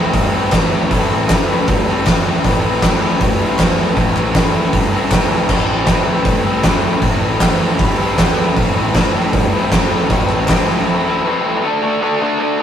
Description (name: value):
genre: garage rock duo or trio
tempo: 156 BPM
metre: 4/4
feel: straight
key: A minor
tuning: A4 = 440 Hz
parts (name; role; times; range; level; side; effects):
- raw garage guitar; riff; 0.0-12.6 s; A2 to E4; -16 LUFS; left 1 dB; overdrive
- fuzz picked electric bass; bass; 0.0-10.8 s; A1 to G2; -24 LUFS; equal; none
- oversized low-tuned drum kit; drums; 0.1-10.6 s; crash cymbal, hi-hat, kick drum, snare drum; -16 LUFS; equal; none
- group handclap; percussion; 0.5-10.6 s; none; -27 LUFS; left 1 dB; none
room: moderate booth ambience, RT60 0.2 s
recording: rough rehearsal-room recording, warm saturation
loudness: -13 LUFS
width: side -9 dB against mid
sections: 0.0-11.6 A section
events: none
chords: 0.0 Am; 11.6 D5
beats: 0.14 0.52 | 0.91 1.29 1.68 2.06 | 2.44 2.83 3.21 3.59 | 3.97 4.36 4.74 5.12 | 5.50 5.88 6.27 6.65 | 7.03 7.42 7.80 8.18 | 8.57 8.95 9.34 9.72 | 10.10 10.49 10.87 11.26 | 11.64 12.03 12.41